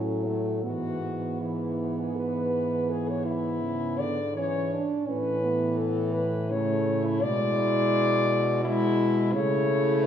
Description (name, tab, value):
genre	classical, lyrical piece for horn quartet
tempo	82 BPM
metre	3/4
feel	rubato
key	unclear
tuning	A4 = 439 Hz
part	mellow French horn	melody	0.0-10.1 s	E4 to D5	-28 LUFS	left 3 dB	none
part	mellow French horn	second line	0.0-10.1 s	A3 to E4	-31 LUFS	right 4 dB	none
part	mellow French horn	accompaniment	0.0-10.1 s	C#3 to A3	-31 LUFS	left 1 dB	none
part	dark French horn	bass	0.0-10.1 s	G#2 to C#3	-30 LUFS	right 1 dB	none
room	wet recital hall reverb, RT60 1.7 s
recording	heard from further back in the room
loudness	-24 LUFS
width	side -9 dB against mid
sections	0.0-10.1 A section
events	none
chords	0.0 A; 0.7 E/G#; 2.9 E7/G#; 5.1 A; 7.2 E7/B; 9.3 A/C#